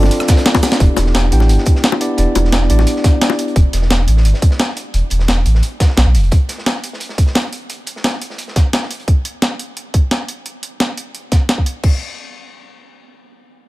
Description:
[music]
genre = liquid drum and bass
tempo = 174 BPM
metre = 4/4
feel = straight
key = unclear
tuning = A4 = 440 Hz
[part]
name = bell-like tine electric piano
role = accompaniment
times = 0.0-3.6 s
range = B3 to G5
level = -20 LUFS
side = equal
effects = low-pass filter, digital delay
[part]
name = airy breathy pad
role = sustained chords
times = 0.0-0.8 s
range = none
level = barely audible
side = none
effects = none
[part]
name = warm sub bass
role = bass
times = 0.0-6.3 s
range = E1 to B1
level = -13 LUFS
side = equal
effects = none
[part]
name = crunchy breakbeat drum kit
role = drums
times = 0.0-9.1 s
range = hi-hat, snare drum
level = -28 LUFS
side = equal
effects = high-pass filter on hats, small room ambience, high-pass filter on snare, high-pass filter on room
[part]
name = bongos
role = percussion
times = 0.0-3.4 s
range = none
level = -22 LUFS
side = left 7 dB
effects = none
[part]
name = breakbeat sampler-style drum kit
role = drums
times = 0.1-11.9 s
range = crash cymbal, hi-hat, rim click, shaker, snare drum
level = -19 LUFS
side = equal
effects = small room ambience
[part]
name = electronic kick drum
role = drums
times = 0.3-11.9 s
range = none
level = -12 LUFS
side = equal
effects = small room ambience
[sound]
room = small room reverb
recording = none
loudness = -12 LUFS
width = side -18 dB against mid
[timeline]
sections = 0.8-11.8 A section; 11.8-13.7 B section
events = drum fill 0.5; filter sweep on tine electric piano 0.8-3.6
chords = 0.0 Dm7; 0.8 Em7; 6.3 N.C.

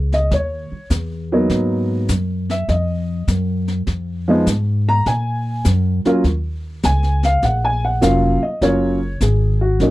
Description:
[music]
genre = jazz piano trio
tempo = 101 BPM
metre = 4/4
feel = swing 68% on 8ths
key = Eb minor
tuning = A4 = 440 Hz
[part]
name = upright bass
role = bass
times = 0.0-9.9 s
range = F1 to Bb2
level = -18 LUFS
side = equal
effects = none
[part]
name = dark upright piano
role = melody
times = 0.1-9.9 s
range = F3 to Bb5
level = -18 LUFS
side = equal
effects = none
[part]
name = jazz brush drum kit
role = drums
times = 0.1-9.9 s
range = brushed snare drum, hi-hat, kick drum, snare drum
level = -23 LUFS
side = equal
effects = none
[sound]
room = little or no reverb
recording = dry, close 1970s-style studio recording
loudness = -16 LUFS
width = side -17 dB against mid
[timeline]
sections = 0.0-9.9 A section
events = none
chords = 0.3 Eb5; 1.5 Abm7; 3.9 Fm; 5.1 Bb7(no3); 6.2 Ebm9

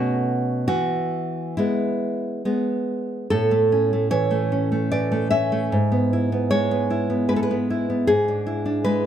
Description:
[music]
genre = romantic piece for solo classical guitar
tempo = 68-78 BPM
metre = 3/4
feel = rubato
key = E major, A major from 3.3 s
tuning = A4 = 442 Hz
[part]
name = nylon-string guitar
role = solo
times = 0.0-9.1 s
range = G#2 to E5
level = -20 LUFS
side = right 1 dB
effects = none
[sound]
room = light reverb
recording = close, detailed microphones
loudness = -20 LUFS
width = side -9 dB against mid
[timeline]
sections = 0.0-3.3 A section; 3.3-9.1 B section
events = none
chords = 0.0 Bsus2; 0.7 E; 3.3 A; 5.7 E/G#; 8.1 E7/G#

